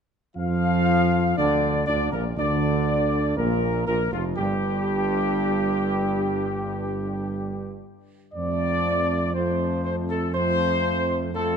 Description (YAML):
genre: classical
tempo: 60 BPM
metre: 4/4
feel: straight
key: Bb major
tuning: A4 = 440 Hz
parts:
  - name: mellow trumpet section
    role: melody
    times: 0.4-11.6 s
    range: F4 to F5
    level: -25 LUFS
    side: right 1 dB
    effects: none
  - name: bright trombone section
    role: sustained chords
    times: 0.4-11.6 s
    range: F2 to F3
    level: -29 LUFS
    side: right 2 dB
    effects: none
  - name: warm French horn section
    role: sustained chords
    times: 0.4-11.6 s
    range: F3 to F4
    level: -29 LUFS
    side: left 6 dB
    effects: none
  - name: mellow tuba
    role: bass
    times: 0.4-11.6 s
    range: F1 to F2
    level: -27 LUFS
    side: right 3 dB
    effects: none
room: light reverb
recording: none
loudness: -21 LUFS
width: side -7 dB against mid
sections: 0.4-11.6 A section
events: none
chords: 0.4 Bb; 4.4 N.C.; 8.4 F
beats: | 0.37 1.38 2.38 3.38 | 4.38 5.37 6.37 7.36 | 8.36 9.35 10.34 11.33